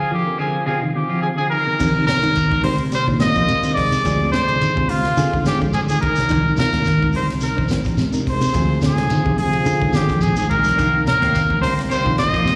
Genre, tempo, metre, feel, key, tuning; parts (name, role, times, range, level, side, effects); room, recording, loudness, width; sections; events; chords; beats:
afrobeat; 107 BPM; 4/4; swing 54% on 16ths; C minor; A4 = 438 Hz
clear trumpet; melody; 0.0-12.6 s; F4 to Eb5; -22 LUFS; equal; plate reverb, slapback echo, tape echo
trombone with bucket mute; second line; 0.0-12.6 s; C3 to Bb3; -32 LUFS; equal; plate reverb, slapback echo
clean electric guitar; arpeggios; 0.0-12.5 s; C3 to Ab3; -26 LUFS; equal; plate reverb, slapback echo
electric guitar at the edge of break-up; stabs; 0.0-1.5, 10.8-12.5 s; Eb3 to G4; -33 LUFS; equal; tremolo, plate reverb, slapback echo, tape echo
reed electric piano; accompaniment; 0.3-12.3 s; D3 to C5; -31 LUFS; equal; plate reverb, slapback echo
fingered electric bass; bass; 1.8-12.6 s; Ab1 to Eb3; -24 LUFS; equal
tight funk drum kit; drums; 1.8-12.6 s; crash cymbal, hi-hat, kick drum, ride cymbal, snare drum; -30 LUFS; equal
congas; percussion; 1.8-12.6 s; -30 LUFS; equal
shekere; percussion; 1.8-12.6 s; -30 LUFS; equal
moderate club reverb, RT60 0.7 s; live gig heard through the venue's PA, recital hall reverb; -18 LUFS; mono
0.0-1.8 A section; 1.8-12.6 A section
break 0.0-1.8; drum fill 10.4-10.8
0.0 Dm7b5; 1.8 Cm7; 4.0 Dm7b5; 6.3 Cm7; 8.5 Dm7b5; 10.8 Cm7
0.11 0.67 1.23 | 1.80 2.36 2.92 3.49 | 4.05 4.61 5.17 5.73 | 6.29 6.86 7.42 7.98 | 8.54 9.10 9.66 10.22 | 10.78 11.34 11.90 12.46